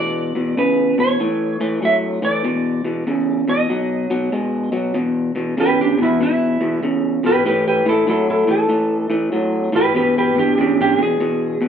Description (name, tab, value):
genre	blues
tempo	96 BPM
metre	4/4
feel	swing 65% on 8ths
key	unclear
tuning	A4 = 440 Hz
part	clean lap steel guitar	melody	0.0-11.6 s	B3 to E5	-18 LUFS	right 1 dB	none
part	electric guitar through a small old amp	riff	0.0-11.7 s	E2 to G#3	-18 LUFS	equal	none
room	wet large studio reverb, RT60 1.0 s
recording	band playing live in one room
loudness	-16 LUFS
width	side -8 dB against mid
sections	0.0-4.9 A section; 4.9-11.7 B section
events	electric slide guitar solo 4.9-11.7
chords	0.0 E5; 1.2 A; 2.4 E5; 3.7 B; 4.9 E5; 7.4 A5; 9.9 E7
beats	0.57 1.20 1.82 | 2.45 3.07 3.70 4.32 | 4.95 5.57 6.20 6.82 | 7.45 8.07 8.70 9.32 | 9.95 10.57 11.20